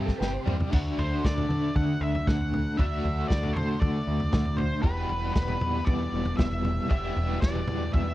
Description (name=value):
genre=psychedelic rock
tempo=116 BPM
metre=4/4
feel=straight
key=unclear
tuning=A4 = 441 Hz
part: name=overdriven electric guitar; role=riff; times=0.0-8.1 s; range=E2 to G4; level=-30 LUFS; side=equal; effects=tremolo
part: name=deep dub picked electric bass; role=bass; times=0.0-8.1 s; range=E1 to D3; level=-30 LUFS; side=equal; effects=none
part: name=tonewheel organ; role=sustained chords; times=0.1-0.6 s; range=A4 to C5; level=-36 LUFS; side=right 5 dB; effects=slow rotary speaker, chorus vibrato
part: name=crunchy breakbeat drum kit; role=drums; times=0.1-8.1 s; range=crash cymbal, kick drum, snare drum, toms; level=-28 LUFS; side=equal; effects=none
part: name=octave-fuzz lead guitar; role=melody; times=1.0-8.1 s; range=B4 to F#5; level=-34 LUFS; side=equal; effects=distortion, slapback echo
room=little or no reverb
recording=dry, close 1970s-style studio recording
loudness=-24 LUFS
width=side -15 dB against mid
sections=0.7-8.1 A section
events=drum fill 0.2-0.7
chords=0.0 Am7; 0.7 D; 4.8 Em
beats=0.21 | 0.73 1.24 1.76 2.27 | 2.79 3.30 3.82 4.33 | 4.85 5.36 5.88 6.39 | 6.91 7.43 7.94